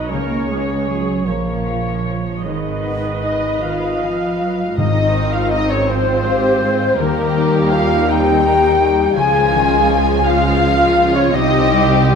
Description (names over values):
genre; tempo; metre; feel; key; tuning
cinematic, emotional film score for orchestra; 51-56 BPM (dotted quarters); 6/8; rubato; Ab major from 4.8 s; A4 = 440 Hz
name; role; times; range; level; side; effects
clear French horn; melody; 0.0-3.6 s; G#3 to D#4; -26 LUFS; equal; none
muted symphonic viola section; accompaniment; 0.0-12.2 s; Eb3 to D#5; -24 LUFS; right 1 dB; none
concert harp; arpeggios; 0.0-12.2 s; G#2 to Bb5; -24 LUFS; left 6 dB; none
muted symphonic cello section; bass; 0.0-12.2 s; Ab2 to A#3; -23 LUFS; right 3 dB; none
muted symphonic double bass section; bass; 0.0-12.2 s; G#1 to Eb2; -23 LUFS; right 4 dB; none
muted symphonic violin section; melody; 3.2-12.1 s; Bb4 to Ab5; -20 LUFS; equal; none
mellow hollow silver concert flute; second line; 3.2-12.1 s; Bb4 to Ab5; -20 LUFS; left 1 dB; none
mellow French horn section; sustained chords; 3.2-12.0 s; Bb3 to Ab4; -20 LUFS; left 4 dB; none
muted studio violin section; second line; 4.8-12.2 s; Eb4 to G4; -22 LUFS; left 3 dB; none
timpani; percussion; 4.8-5.9 s; Ab2; -22 LUFS; equal; none
room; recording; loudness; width
moderate scoring stage reverb, RT60 1.9 s; minimal, uncompressed stereo recording; -14 LUFS; side -6 dB against mid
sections
0.0-4.8 A section; 4.8-12.2 A section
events
none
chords
0.1 C#; 2.4 G#m7; 4.8 Ab6; 7.0 Eb; 9.2 Db; 11.3 Cm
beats
| 0.13 1.27 | 2.44 3.62 | 4.78 5.89 | 7.00 8.09 | 9.17 10.26 | 11.34